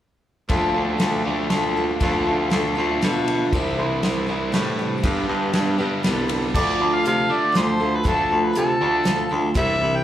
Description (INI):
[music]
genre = folk rock and heartland rock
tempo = 119 BPM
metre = 3/4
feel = straight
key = D dorian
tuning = A4 = 441 Hz
[part]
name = picked twelve-string acoustic guitar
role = accompaniment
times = 0.5-10.0 s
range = G2 to A4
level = -25 LUFS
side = left 1 dB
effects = slapback echo
[part]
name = overdriven electric guitar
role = riff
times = 0.5-10.0 s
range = G2 to G4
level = -26 LUFS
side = right 1 dB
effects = none
[part]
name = raspy baritone saxophone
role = bass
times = 0.5-10.0 s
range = C2 to C3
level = -24 LUFS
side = equal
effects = none
[part]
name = natural country drum kit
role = drums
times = 0.5-9.7 s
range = crash cymbal, hi-hat, kick drum, ride cymbal, snare drum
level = -26 LUFS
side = equal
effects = none
[part]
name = mellow harmonica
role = melody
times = 6.5-10.0 s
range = A4 to G5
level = -22 LUFS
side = equal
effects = slapback echo
[sound]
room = light reverb, small room ambience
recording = live gig heard through the venue's PA, club reverb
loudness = -18 LUFS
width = side -11 dB against mid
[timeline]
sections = 0.5-6.5 A section; 6.5-10.0 B section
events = none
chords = 0.5 Dm; 3.5 Cadd9; 5.0 G; 6.5 Dm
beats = | 0.51 1.01 1.51 | 2.02 2.52 3.03 | 3.53 4.03 4.54 | 5.04 5.54 6.04 | 6.55 7.05 7.55 | 8.05 8.55 9.06 | 9.56